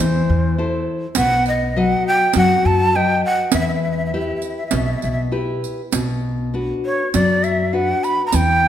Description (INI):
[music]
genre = italian folk, Italian serenade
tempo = 101 BPM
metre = 4/4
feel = straight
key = E harmonic minor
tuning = A4 = 440 Hz
[part]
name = breathy shakuhachi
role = melody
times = 0.0-8.7 s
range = C5 to B5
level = -19 LUFS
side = right 2 dB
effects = none
[part]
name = nylon-string guitar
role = accompaniment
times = 0.0-8.7 s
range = B2 to D#5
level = -21 LUFS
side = left 4 dB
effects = none
[part]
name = upright bass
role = bass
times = 0.0-8.7 s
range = B1 to F#2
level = -22 LUFS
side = right 1 dB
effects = none
[part]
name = riq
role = percussion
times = 1.1-8.6 s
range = none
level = -23 LUFS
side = right 8 dB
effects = none
[sound]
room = wet recital hall reverb, RT60 1.5 s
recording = none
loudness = -16 LUFS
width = side -10 dB against mid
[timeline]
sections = 0.0-5.9 A section; 5.9-8.7 B section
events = none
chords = 0.0 Am; 1.2 B; 3.5 Em; 5.9 Bm